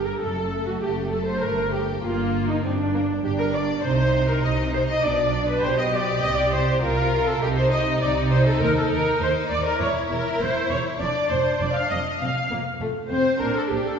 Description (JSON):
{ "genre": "quick classical-period movement for string orchestra", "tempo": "100 BPM", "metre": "4/4", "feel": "straight", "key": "unclear", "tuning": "A4 = 440 Hz", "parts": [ { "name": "rich studio violin section", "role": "melody", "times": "0.0-14.0 s", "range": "D4 to F5", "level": "-32 LUFS", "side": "left 4 dB", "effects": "none" }, { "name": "rich symphonic viola section", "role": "accompaniment", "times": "0.0-14.0 s", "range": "D4 to F5", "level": "-24 LUFS", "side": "right 1 dB", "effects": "none" }, { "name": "rich chamber double bass section", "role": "bass", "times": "0.0-13.8 s", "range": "E1 to Eb2", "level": "-28 LUFS", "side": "right 2 dB", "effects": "none" }, { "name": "rich studio cello section", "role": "bass", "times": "0.0-13.8 s", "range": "Eb2 to C3", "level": "-29 LUFS", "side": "right 3 dB", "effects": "none" }, { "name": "rich chamber violin section", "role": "second line", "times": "0.2-14.0 s", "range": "A3 to G4", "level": "-28 LUFS", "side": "left 2 dB", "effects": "none" } ], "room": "wet scoring stage reverb, RT60 1.6 s", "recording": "heard from further back in the room, nothing above 7.8 kHz", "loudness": "-20 LUFS", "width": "side -6 dB against mid", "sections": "0.0-14.0 A section", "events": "none", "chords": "0.2 F#dim; 1.4 Gm; 3.8 Cm; 5.0 G/B; 6.2 Cm; 8.6 Cm13/Eb; 9.8 C7b9/E; 11.0 F5; 13.4 Bb", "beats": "0.21 0.82 | 1.42 2.03 2.63 3.24 | 3.84 4.45 5.04 5.64 | 6.24 6.83 7.42 8.02 | 8.61 9.21 9.80 10.40 | 11.01 11.61 12.21 12.80 | 13.41" }